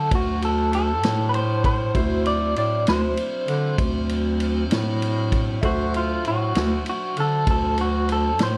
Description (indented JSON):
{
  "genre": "slow blues",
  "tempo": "65 BPM (dotted quarters)",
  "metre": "12/8",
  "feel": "straight",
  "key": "D mixolydian",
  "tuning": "A4 = 440 Hz",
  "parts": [
    { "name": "electric guitar through a small old amp", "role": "melody", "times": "0.0-8.6 s", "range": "F4 to D5", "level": "-27 LUFS", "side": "equal", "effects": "tremolo" },
    { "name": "clear concert grand piano", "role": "accompaniment", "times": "0.0-8.6 s", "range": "E4 to E5", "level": "-37 LUFS", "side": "equal", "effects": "none" },
    { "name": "tonewheel organ", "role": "sustained chords", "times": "0.0-8.6 s", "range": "F#3 to C5", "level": "-37 LUFS", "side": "equal", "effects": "slow rotary speaker" },
    { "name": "breathy bass clarinet", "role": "bass", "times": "0.0-8.6 s", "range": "D2 to D3", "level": "-25 LUFS", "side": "equal", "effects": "none" },
    { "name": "vintage drum kit", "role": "drums", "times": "0.1-8.5 s", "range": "kick drum, ride cymbal, snare drum", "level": "-29 LUFS", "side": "equal", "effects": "none" }
  ],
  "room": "light reverb",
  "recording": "dark, warm production",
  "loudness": "-22 LUFS",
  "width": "mono",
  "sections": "0.0-8.6 A section",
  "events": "none",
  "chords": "0.0 D7"
}